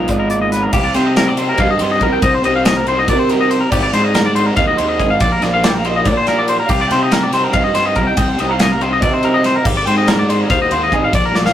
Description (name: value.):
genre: math rock and midwest emo.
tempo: 283 BPM (eighths).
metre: 7/8.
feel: straight.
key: unclear.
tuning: A4 = 439 Hz.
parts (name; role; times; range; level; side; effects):
electric guitar through a small old amp; accompaniment; 0.0-0.7 s; Ab2 to Cb5; -22 LUFS; equal; none.
twangy electric guitar; arpeggios; 0.0-11.5 s; G4 to G5; -17 LUFS; left 2 dB; harmonic tremolo.
overdriven electric guitar; riff; 0.0-11.5 s; Ab2 to G4; -23 LUFS; equal; none.
fuzz fingered electric bass; bass; 0.0-11.5 s; Ab1 to C3; -18 LUFS; equal; overdrive.
electric guitar through a small old amp; melody; 0.1-11.5 s; Bb4 to Bb5; -22 LUFS; right 2 dB; tape echo.
modern studio drum kit; drums; 0.1-11.5 s; crash cymbal, hi-hat, kick drum, ride cymbal, snare drum; -18 LUFS; equal; none.
room: moderate small room reverb, RT60 0.6 s.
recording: rough rehearsal-room recording.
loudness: -12 LUFS.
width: side -11 dB against mid.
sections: 0.7-11.5 A section.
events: drum fill 11.3.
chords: 0.0 Abm6; 0.7 Cm7; 3.7 Ab; 5.2 Bb; 6.7 Cm7; 9.7 Ab.